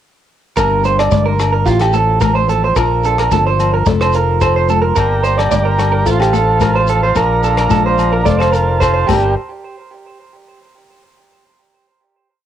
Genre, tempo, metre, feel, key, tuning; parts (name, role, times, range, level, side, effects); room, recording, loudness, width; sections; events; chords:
highlife guitar band; 109 BPM; 4/4; straight; G minor; A4 = 440 Hz
flamenco guitar; accompaniment; 0.6-9.4 s; G2 to Bb4; -22 LUFS; left 9 dB; cassette tape
electric guitar at the edge of break-up; arpeggios; 0.6-9.3 s; F4 to D5; -15 LUFS; right 6 dB; cassette tape, tape echo
fingered electric bass; bass; 0.6-9.3 s; F1 to Bb1; -16 LUFS; left 1 dB
soft brush drum kit; drums; 0.6-9.2 s; crash cymbal, hi-hat, kick drum, rim click; -22 LUFS; left 1 dB; cassette tape
agogo bells; percussion; 0.6-9.2 s; -23 LUFS; left 10 dB
congas; percussion; 0.6-9.3 s; -23 LUFS; left 11 dB
shekere; percussion; 0.6-9.3 s; -27 LUFS; left 7 dB
combo organ; sustained chords; 5.0-9.4 s; Bb4 to Bb5; -22 LUFS; left 1 dB; cassette tape
light reverb; home recording on cassette; -11 LUFS; side -10 dB against mid
0.6-9.4 groove; 9.4-11.6 final hit
0.6 Gm; 1.7 F/A; 2.8 Bb; 3.9 F; 5.0 Gm; 6.1 F/A; 7.2 Bb; 8.3 F; 9.1 Gm; 9.4 N.C.